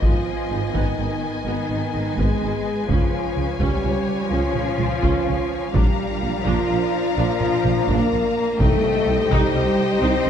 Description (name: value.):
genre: cinematic, epic orchestral film score.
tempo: 84 BPM (dotted quarters).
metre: 12/8.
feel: straight.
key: unclear.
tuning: A4 = 439 Hz.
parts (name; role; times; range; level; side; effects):
warm symphonic violin section; melody; 0.0-10.3 s; G5 to Bb5; -32 LUFS; left 6 dB; none.
warm symphonic violin section; second line; 0.0-10.3 s; Db5 to F5; -33 LUFS; left 5 dB; none.
warm symphonic viola section; accompaniment; 0.0-10.3 s; Eb3 to Eb4; -32 LUFS; equal; none.
dark French horn section; sustained chords; 0.0-10.3 s; Eb4 to C5; -25 LUFS; left 1 dB; none.
warm symphonic string section; sustained chords; 0.0-10.3 s; Cb4 to Ab5; -29 LUFS; left 2 dB; none.
mellow tuba; bass; 0.0-10.3 s; Ab1 to Db2; -29 LUFS; right 4 dB; none.
rich symphonic cello section; bass; 0.0-10.3 s; Eb3 to C4; -27 LUFS; right 1 dB; none.
warm symphonic double bass section; bass; 0.0-10.3 s; Ab1 to Db2; -27 LUFS; right 2 dB; none.
taiko ensemble; drums; 0.0-10.3 s; none; -24 LUFS; equal; none.
timpani; percussion; 8.6-9.3 s; C3; -30 LUFS; left 1 dB; none.
room: moderate concert hall reverb, RT60 2.2 s.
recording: dark, warm production.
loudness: -18 LUFS.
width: side -8 dB against mid.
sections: 0.0-10.3 A section.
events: none.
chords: 0.0 Abm; 2.9 Db; 5.7 Bb; 8.6 Cm.